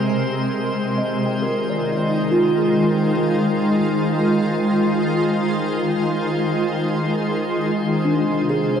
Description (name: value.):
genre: ambient.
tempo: 68 BPM.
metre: 4/4.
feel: straight.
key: unclear.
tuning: A4 = 441 Hz.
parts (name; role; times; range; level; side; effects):
shimmering ambient pad; sustained chords; 0.0-8.8 s; B#2 to A#4; -19 LUFS; equal; chorus, built-in reverb.
drifting glass-harmonics texture; texture; 0.0-8.8 s; C5 to C6; -30 LUFS; left 1 dB; chorus, built-in reverb.
kalimba; arpeggios; 0.1-8.8 s; D4 to A#5; -24 LUFS; right 1 dB; tape echo.
room: wet huge ambient reverb, RT60 7.2 s.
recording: dark, warm production.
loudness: -18 LUFS.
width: side -8 dB against mid.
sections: 0.0-8.8 A section.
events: none.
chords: 0.0 G#add9; 0.5 Fm9; 7.6 G#.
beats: | 0.54 1.43 2.31 3.19 | 4.07 4.96 5.84 6.72 | 7.60 8.48.